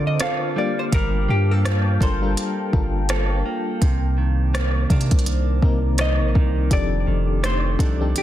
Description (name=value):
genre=contemporary R&B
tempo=83 BPM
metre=4/4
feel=swing 58% on 16ths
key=G minor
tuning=A4 = 440 Hz
part: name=vintage hollow-body jazz guitar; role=melody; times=0.0-8.2 s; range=G4 to F5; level=-27 LUFS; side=left 2 dB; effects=digital delay
part: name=FM electric piano with tremolo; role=accompaniment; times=0.0-8.2 s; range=C3 to C5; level=-27 LUFS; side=left 5 dB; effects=none
part: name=deep dark ambient pad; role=sustained chords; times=0.0-8.2 s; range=A4 to D6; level=-32 LUFS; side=equal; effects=chorus, built-in reverb
part: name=direct-recorded clean electric guitar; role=arpeggios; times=0.0-8.2 s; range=F2 to A4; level=-28 LUFS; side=right 6 dB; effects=digital delay
part: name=long sustained 808-style bass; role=bass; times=0.0-8.1 s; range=F1 to D3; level=-21 LUFS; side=equal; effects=none
part: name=smooth R&B drum kit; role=drums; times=0.2-8.2 s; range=hi-hat, kick drum, rim click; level=-22 LUFS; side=equal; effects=soft clipping on snare
room=little or no reverb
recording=dense, heavily limited modern master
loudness=-18 LUFS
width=side -12 dB against mid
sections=0.0-8.2 A section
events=none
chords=0.0 Dm7; 0.6 Gm9; 3.8 Cm9; 6.7 F13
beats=0.20 | 0.93 1.65 2.37 3.09 | 3.82 4.54 5.26 5.99 | 6.71 7.43 8.15